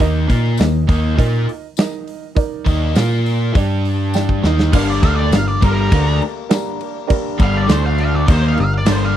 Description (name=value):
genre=classic rock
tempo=101 BPM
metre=4/4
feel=straight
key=G minor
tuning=A4 = 440 Hz
part: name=dark upright piano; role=accompaniment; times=0.0-9.2 s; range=A3 to G5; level=-26 LUFS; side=right 13 dB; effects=none
part: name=biting overdriven guitar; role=riff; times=0.0-9.2 s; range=G2 to Bb4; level=-23 LUFS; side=left 12 dB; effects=phaser
part: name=raw garage guitar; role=riff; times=0.0-9.2 s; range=G2 to Bb4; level=-24 LUFS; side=right 9 dB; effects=overdrive
part: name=hollow-body short-scale picked electric bass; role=bass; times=0.0-9.2 s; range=G1 to Bb2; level=-17 LUFS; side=equal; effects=none
part: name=big rock drum kit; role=drums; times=0.0-9.0 s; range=crash cymbal, hi-hat, kick drum, snare drum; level=-17 LUFS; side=equal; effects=none
part: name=tambourine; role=percussion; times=0.6-9.0 s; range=none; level=-34 LUFS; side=left 17 dB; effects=none
part: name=octave-fuzz lead guitar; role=melody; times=4.7-9.2 s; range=Bb4 to F5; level=-22 LUFS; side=right 2 dB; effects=wah, distortion, slapback echo
part: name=picked swing-style acoustic guitar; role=accompaniment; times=4.7-9.2 s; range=G2 to Bb4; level=-28 LUFS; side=left 13 dB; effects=none
part: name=crunchy overdriven guitar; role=riff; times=4.7-9.2 s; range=G2 to Eb4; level=-23 LUFS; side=left 1 dB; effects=spring reverb
room=little or no reverb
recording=dry, close 1970s-style studio recording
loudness=-14 LUFS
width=side -11 dB against mid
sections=0.0-4.7 A section; 4.7-9.2 B section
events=upright piano fill 3.8-4.7; drum fill 4.1-4.7; lead electric guitar solo 4.7-9.2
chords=0.0 Eb5; 3.0 Bb5; 3.5 G5; 4.4 Eb5; 4.7 Gm; 7.7 D5; 8.3 Gm